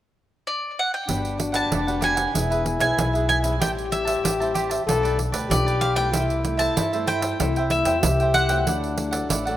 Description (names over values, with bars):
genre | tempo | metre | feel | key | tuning
samba and choro | 95 BPM | 4/4 | straight | G major | A4 = 440 Hz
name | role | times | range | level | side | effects
bowl-back mandolin | melody | 0.5-9.6 s | D5 to A5 | -25 LUFS | equal | tape echo
warm trombone | second line | 1.1-9.6 s | D4 to A4 | -27 LUFS | left 3 dB | none
cavaquinho | accompaniment | 1.1-9.6 s | D4 to A5 | -28 LUFS | right 2 dB | none
nylon-string guitar | accompaniment | 1.1-9.6 s | G2 to G#4 | -35 LUFS | left 4 dB | none
upright bass | bass | 1.1-9.6 s | E1 to G2 | -27 LUFS | equal | none
pandeiro | percussion | 1.1-9.6 s | none | -27 LUFS | right 4 dB | none
room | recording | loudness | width
moderate lush hall reverb, RT60 2.5 s | rough home demo mix | -20 LUFS | side -13 dB against mid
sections
0.0-1.1 A section; 1.1-9.6 B section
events
none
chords
0.0 N.C.; 1.1 Gmaj7; 2.3 E; 3.6 Am7; 4.9 G7/B; 6.1 C6; 7.4 Am7/C; 8.7 Dadd9